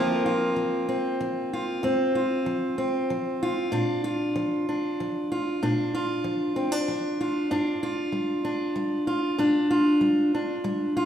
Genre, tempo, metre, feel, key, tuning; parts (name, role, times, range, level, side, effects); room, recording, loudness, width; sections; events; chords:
folk; 95 BPM; 3/4; straight; Bb major; A4 = 443 Hz
fingerpicked steel-string acoustic guitar; solo; 0.0-11.1 s; F2 to F4; -23 LUFS; equal
wet recital hall reverb, RT60 1.5 s; recorded in a church or concert hall; -24 LUFS; side -9 dB against mid
0.0-11.1 A section
0.0 Fsus4; 3.7 Bb; 7.5 G5